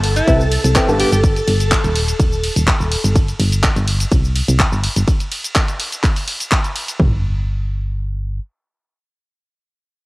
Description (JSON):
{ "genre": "piano house", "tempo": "125 BPM", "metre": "4/4", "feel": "swing 53% on 16ths", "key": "unclear", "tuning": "A4 = 437 Hz", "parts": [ { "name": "string machine, violins", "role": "sustained chords", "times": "0.0-3.2 s", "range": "A4 to A5", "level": "-23 LUFS", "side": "equal", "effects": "ensemble chorus, sidechain pumping, cassette tape" }, { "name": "solid FM bass", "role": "bass", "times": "0.0-8.4 s", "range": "Eb1 to C2", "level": "-18 LUFS", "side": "equal", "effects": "sidechain pumping" }, { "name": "house drum kit", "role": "drums", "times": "0.0-7.0 s", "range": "cabasa, handclaps, hi-hat, ride cymbal", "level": "-20 LUFS", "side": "equal", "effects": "cassette tape" }, { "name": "clear tenor saxophone", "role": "melody", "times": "0.2-1.2 s", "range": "E4 to G4", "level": "-22 LUFS", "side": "equal", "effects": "cassette tape, tape echo" }, { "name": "clear upright piano", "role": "riff", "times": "0.3-1.1 s", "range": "G2 to A5", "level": "-20 LUFS", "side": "equal", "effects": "sidechain pumping, cassette tape, tape echo" }, { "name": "house drum kit", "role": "drums", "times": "0.3-7.1 s", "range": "kick drum, toms", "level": "-16 LUFS", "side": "equal", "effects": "cassette tape" } ], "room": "light reverb", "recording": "home recording on cassette", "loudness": "-14 LUFS", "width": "side -22 dB against mid", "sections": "0.0-7.0 A section; 7.0-10.1 B section", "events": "drop 0.0-7.0", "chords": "0.3 Cmaj7; 1.0 Eb; 3.2 N.C.; 4.1 C5; 4.8 N.C." }